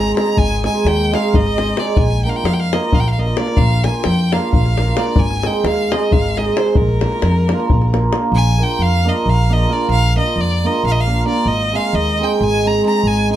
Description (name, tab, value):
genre	balkan folk, Balkan wedding band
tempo	266 BPM (eighths)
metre	7/8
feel	straight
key	Bb mixolydian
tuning	A4 = 440 Hz
part	clear violin	melody	0.0-13.4 s	Bb4 to Bb5	-22 LUFS	left 1 dB	none
part	cimbalom	accompaniment	0.0-13.4 s	Ab3 to Bb4	-18 LUFS	right 2 dB	none
part	upright bass	bass	0.0-13.3 s	Ab1 to F2	-17 LUFS	equal	none
part	davul	percussion	0.1-8.2 s	none	-18 LUFS	left 2 dB	none
room	light reverb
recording	dark, warm production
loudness	-13 LUFS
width	side -12 dB against mid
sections	0.0-8.3 A section; 8.3-13.4 A section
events	none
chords	0.0 Ab; 2.0 Bb; 5.2 Ab; 6.8 Bb; 11.5 Ab